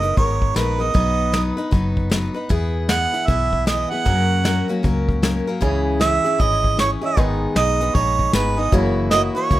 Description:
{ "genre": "honky-tonk and classic country", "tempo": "154 BPM", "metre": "4/4", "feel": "swing 63% on 8ths", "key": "B major", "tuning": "A4 = 439 Hz", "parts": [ { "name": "mellow harmonica", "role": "second line", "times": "0.0-9.6 s", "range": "B4 to F#5", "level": "-20 LUFS", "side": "right 5 dB", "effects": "none" }, { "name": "picked steel-string acoustic guitar", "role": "accompaniment", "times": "0.0-9.6 s", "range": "F#2 to B4", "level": "-23 LUFS", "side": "left 3 dB", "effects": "none" }, { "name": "vintage muted fingered electric bass", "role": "bass", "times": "0.0-9.6 s", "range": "F#1 to F#2", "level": "-22 LUFS", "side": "equal", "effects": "none" }, { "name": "soft brush drum kit", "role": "drums", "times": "0.0-9.6 s", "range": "hi-hat, kick drum, snare drum", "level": "-22 LUFS", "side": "equal", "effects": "none" }, { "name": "warm upright piano", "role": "accompaniment", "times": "5.6-9.6 s", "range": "E4 to D#5", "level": "-28 LUFS", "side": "right 4 dB", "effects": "none" } ], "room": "light reverb", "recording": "rough home demo mix", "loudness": "-17 LUFS", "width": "side -15 dB against mid", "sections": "0.0-9.6 A section", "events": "harmonica solo 0.0-9.6", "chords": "0.0 G#madd9; 1.0 B; 2.5 E; 4.1 F#; 5.6 C#m; 7.2 G#m; 8.7 F#7" }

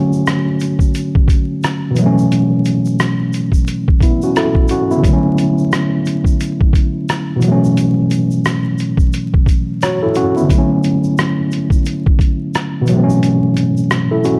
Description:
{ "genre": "lo-fi hip hop", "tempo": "88 BPM", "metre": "4/4", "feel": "swing 59% on 16ths", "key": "B minor", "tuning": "A4 = 439 Hz", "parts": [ { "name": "tine electric piano", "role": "accompaniment", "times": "0.0-14.4 s", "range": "B2 to C#5", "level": "-16 LUFS", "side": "equal", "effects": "overdrive" }, { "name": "tube shaker", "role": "percussion", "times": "0.1-14.4 s", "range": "none", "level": "-42 LUFS", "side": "equal", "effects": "none" }, { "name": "lo-fi sampler-style drum kit", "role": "drums", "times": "0.3-14.4 s", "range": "hi-hat, kick drum, rim click", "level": "-17 LUFS", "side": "equal", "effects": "none" } ], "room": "little or no reverb", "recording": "dry, gritty hardware recording, vinyl crackle", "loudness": "-15 LUFS", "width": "mono", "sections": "0.0-14.4 A section", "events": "none", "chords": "0.0 Dmaj7; 2.0 B9sus4; 5.0 Dmaj13; 12.9 B9sus4" }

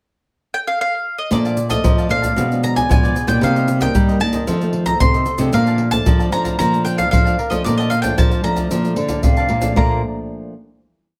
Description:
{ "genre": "samba and choro", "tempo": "114 BPM", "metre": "4/4", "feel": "straight", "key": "Bb major", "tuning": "A4 = 439 Hz", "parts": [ { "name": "mandolin", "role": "melody", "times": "0.5-10.0 s", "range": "D5 to C6", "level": "-23 LUFS", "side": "equal", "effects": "slapback echo" }, { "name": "cavaquinho", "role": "accompaniment", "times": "1.3-10.0 s", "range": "Eb4 to A5", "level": "-32 LUFS", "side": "equal", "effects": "none" }, { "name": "nylon-string guitar", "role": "accompaniment", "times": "1.3-10.5 s", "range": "F2 to Eb4", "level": "-25 LUFS", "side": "equal", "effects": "none" }, { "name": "nylon-string guitar", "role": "bass", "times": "1.3-10.0 s", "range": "Bb2 to G3", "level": "-22 LUFS", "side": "equal", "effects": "none" }, { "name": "egg shaker, surdo and pandeiro", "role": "percussion", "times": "1.3-9.9 s", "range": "none", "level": "-22 LUFS", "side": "equal", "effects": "none" }, { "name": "wooden flute", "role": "second line", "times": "9.0-10.0 s", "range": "D5 to F5", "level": "-25 LUFS", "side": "equal", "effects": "slapback echo" } ], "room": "moderate large studio reverb, RT60 0.9 s", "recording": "none", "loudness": "-17 LUFS", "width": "mono", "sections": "0.0-1.3 pickup bar; 1.3-9.8 A section; 9.8-11.2 final chord", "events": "none", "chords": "0.0 N.C.; 1.3 Bbmaj7; 2.4 Bdim7; 3.4 Cm7; 4.5 F7; 5.5 Bbmaj7" }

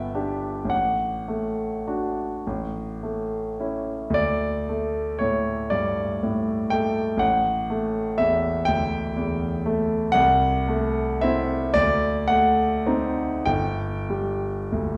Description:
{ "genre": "classical, romantic nocturne for solo piano", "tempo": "31-41 BPM (dotted quarters)", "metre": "6/8", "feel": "rubato", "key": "D major", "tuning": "A4 = 439 Hz", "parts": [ { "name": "clear concert grand piano", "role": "solo", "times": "0.0-15.0 s", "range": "G1 to G5", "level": "-24 LUFS", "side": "equal", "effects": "none" } ], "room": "wet recital hall reverb, RT60 1.2 s", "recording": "heard from further back in the room", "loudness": "-24 LUFS", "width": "mono", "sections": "0.0-15.0 A section", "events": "none", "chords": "0.0 Em7/G; 0.7 D/A; 2.4 A; 4.1 D5; 7.2 A5; 10.2 Am/C; 11.8 D7b9; 13.5 G5" }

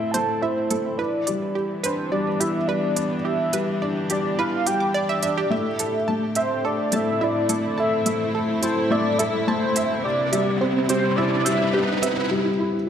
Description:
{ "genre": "piano and strings electronica", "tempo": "106 BPM", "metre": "4/4", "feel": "straight", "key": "A minor", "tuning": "A4 = 440 Hz", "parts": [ { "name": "warm velvety synth lead", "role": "melody", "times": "0.0-12.3 s", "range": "B4 to A5", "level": "-25 LUFS", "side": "equal", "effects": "chorus, tremolo" }, { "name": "warm studio string section", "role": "sustained chords", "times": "0.0-12.3 s", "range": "A2 to B4", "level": "-29 LUFS", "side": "equal", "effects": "none" }, { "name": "felt-muted upright piano", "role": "riff", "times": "0.0-12.9 s", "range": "G3 to E5", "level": "-25 LUFS", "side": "left 1 dB", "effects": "none" }, { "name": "analog pluck", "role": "arpeggios", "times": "0.1-12.1 s", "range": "G4 to D6", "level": "-29 LUFS", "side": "right 4 dB", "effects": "chorus, tape echo" }, { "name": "organic electronic drum kit", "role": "drums", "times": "0.1-12.1 s", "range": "hi-hat, toms", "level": "-29 LUFS", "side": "right 2 dB", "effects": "high-pass filter on hats, high-pass filter on toms, high-pass filter on room" }, { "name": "riser", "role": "sound effects", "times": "7.8-12.3 s", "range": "none", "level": "-30 LUFS", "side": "right 2 dB", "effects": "none" } ], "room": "wet scoring stage reverb, RT60 1.7 s, digital ambience", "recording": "none", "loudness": "-20 LUFS", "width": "side -8 dB against mid", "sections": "0.0-12.9 A section", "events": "build-up 0.0-12.9; riser 7.8-12.3", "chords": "0.0 Am; 1.0 Em7; 5.5 Am; 10.0 Cmaj7" }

